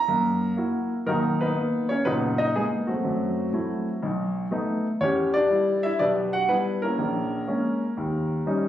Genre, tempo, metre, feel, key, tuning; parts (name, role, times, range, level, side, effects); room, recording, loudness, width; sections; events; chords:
solo jazz; 122 BPM; 4/4; swing 67% on 8ths; B major; A4 = 441 Hz
warm grand piano; solo; 0.0-8.7 s; F#1 to A#5; -22 LUFS; equal
moderate large studio reverb, RT60 1.1 s; recorded on a phone in the room, club reverb; -22 LUFS; side -11 dB against mid
0.0-1.1 A section; 1.1-8.7 B section
grand piano solo 0.0-1.1
0.1 F#7; 1.1 Bmaj7; 3.0 F#m7b5; 4.0 B7; 5.0 Em7; 7.0 A#m7b5; 8.0 D#7